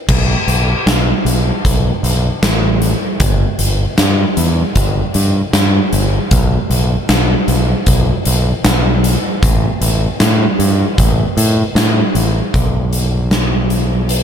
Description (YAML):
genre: post-rock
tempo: 77 BPM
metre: 4/4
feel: straight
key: unclear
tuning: A4 = 440 Hz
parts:
  - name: growling fingered electric bass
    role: bass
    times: 0.1-14.2 s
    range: G1 to A2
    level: -14 LUFS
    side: equal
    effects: overdrive
  - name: huge arena drum kit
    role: drums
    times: 0.1-14.2 s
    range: crash cymbal, hi-hat, kick drum, snare drum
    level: -14 LUFS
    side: equal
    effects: none
room: light reverb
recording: none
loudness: -12 LUFS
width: side -8 dB against mid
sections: 0.1-12.5 A section; 12.5-14.2 B section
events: none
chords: none